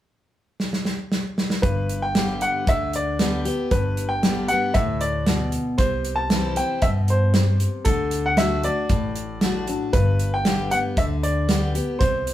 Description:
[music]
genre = honky-tonk and classic country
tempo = 116 BPM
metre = 4/4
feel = straight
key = G major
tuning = A4 = 439 Hz
[part]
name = natural country drum kit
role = drums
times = 0.6-12.3 s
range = hi-hat, kick drum, snare drum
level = -23 LUFS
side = right 1 dB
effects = none
[part]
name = bright upright piano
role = melody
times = 1.6-12.3 s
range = A4 to A5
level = -24 LUFS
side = equal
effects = none
[part]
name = picked steel-string acoustic guitar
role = accompaniment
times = 1.6-12.3 s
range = G2 to G4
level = -27 LUFS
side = left 3 dB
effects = none
[part]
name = upright bass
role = bass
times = 1.6-12.3 s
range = G1 to G2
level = -25 LUFS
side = equal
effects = none
[sound]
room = moderate studio reverb, RT60 1.0 s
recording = band playing live in one room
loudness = -20 LUFS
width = side -13 dB against mid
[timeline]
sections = 0.0-1.6 A section; 1.6-12.3 B section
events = drum fill 0.6-1.6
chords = 0.0 N.C.; 1.6 G; 5.8 C; 7.9 D; 9.9 G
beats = 0.09 0.61 1.13 | 1.65 2.16 2.68 3.20 | 3.72 4.24 4.76 5.28 | 5.79 6.31 6.83 7.35 | 7.87 8.38 8.90 9.42 | 9.94 10.46 10.97 11.49 | 12.01

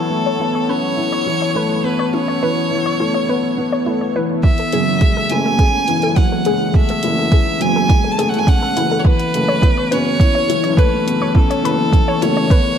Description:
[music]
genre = piano and strings electronica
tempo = 104 BPM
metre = 4/4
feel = straight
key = F# minor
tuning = A4 = 440 Hz
[part]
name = bright violin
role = melody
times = 0.0-12.8 s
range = A4 to A5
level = -20 LUFS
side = right 1 dB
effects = none
[part]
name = lush unison pad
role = sustained chords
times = 0.0-12.8 s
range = F#3 to C#5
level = -27 LUFS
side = right 1 dB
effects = chorus, phaser, sidechain pumping
[part]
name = felt-muted upright piano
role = riff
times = 0.0-12.8 s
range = E3 to E4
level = -19 LUFS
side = left 2 dB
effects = none
[part]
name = warbly dusty pluck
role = arpeggios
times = 0.3-12.6 s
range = E4 to C#5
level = -24 LUFS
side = left 3 dB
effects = chorus, sidechain pumping, tape echo
[part]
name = electronic kick drum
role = drums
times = 4.4-12.6 s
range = none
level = -13 LUFS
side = right 1 dB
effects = none
[part]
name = electronic hi-hat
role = drums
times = 4.6-12.6 s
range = none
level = -31 LUFS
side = left 1 dB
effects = low-pass filter on hats, low-pass filter on room
[part]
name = warm studio double bass section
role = bass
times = 4.7-12.4 s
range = F#1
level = -24 LUFS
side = equal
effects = sidechain pumping, high-pass filter
[sound]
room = light reverb, small room ambience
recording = dark, warm production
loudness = -14 LUFS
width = side -8 dB against mid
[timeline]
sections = 0.0-4.4 A section; 4.4-12.8 B section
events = filter sweep on synth arpeggio sound 0.0-4.4; build-up 4.4-12.8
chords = 0.0 Aadd9; 4.4 F#m9; 9.1 Aadd9/F#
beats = 0.40 0.98 1.56 | 2.13 2.71 3.29 3.86 | 4.44 5.02 5.59 6.17 | 6.75 7.33 7.90 8.48 | 9.06 9.63 10.21 10.79 | 11.36 11.94 12.52

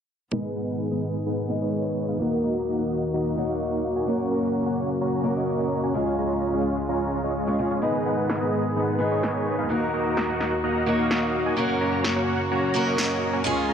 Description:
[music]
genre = EDM, festival progressive house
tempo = 128 BPM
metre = 4/4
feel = straight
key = G# dorian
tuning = A4 = 441 Hz
[part]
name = picked steel-string acoustic guitar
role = accompaniment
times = 0.3-13.7 s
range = G#3 to C#5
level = -28 LUFS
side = equal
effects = dub echo
[part]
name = warm studio string section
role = sustained chords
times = 0.3-13.7 s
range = C#2 to G#4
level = -29 LUFS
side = equal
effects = none
[part]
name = dense compressed supersaw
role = riff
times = 0.3-13.7 s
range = G#3 to A#5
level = -26 LUFS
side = equal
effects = low-pass filter, dub echo
[part]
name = electronic snare drum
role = drums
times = 8.3-13.1 s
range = none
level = -31 LUFS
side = equal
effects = none
[sound]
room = moderate huge ambient reverb, RT60 4.7 s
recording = low-pass filter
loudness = -22 LUFS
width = side -8 dB against mid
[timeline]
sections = 0.3-13.7 A section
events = filter sweep 0.3-13.7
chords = 0.3 G#m; 2.2 D#m; 4.1 F#; 6.0 C#; 7.8 G#m; 9.7 D#m; 11.6 F#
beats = | 0.33 0.80 1.26 1.73 | 2.20 2.67 3.14 3.61 | 4.08 4.55 5.01 5.48 | 5.95 6.42 6.89 7.36 | 7.83 8.30 8.76 9.23 | 9.70 10.17 10.64 11.11 | 11.58 12.05 12.51 12.98 | 13.45

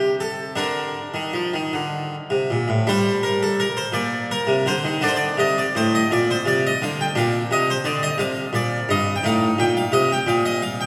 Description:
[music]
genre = classical, baroque-style suite movement for harpsichord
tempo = 52-59 BPM (dotted quarters)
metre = 6/8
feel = rubato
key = G minor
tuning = A4 = 445 Hz
[part]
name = harpsichord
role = solo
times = 0.0-10.9 s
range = G2 to G5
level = -21 LUFS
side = equal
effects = none
[sound]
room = wet church reverb, RT60 3.6 s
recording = recorded in a church or concert hall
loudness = -21 LUFS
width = mono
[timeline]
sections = 0.0-2.9 A section; 2.9-10.9 B section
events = none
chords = 0.0 N.C.; 0.6 Bbadd11/D; 1.7 D5; 2.9 Gm; 5.0 D5; 6.1 Bb69; 7.1 Bb; 9.2 Am7b5; 10.3 N.C.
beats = | 0.57 1.72 | 2.85 3.94 | 5.02 6.09 | 7.14 8.19 | 9.23 10.26

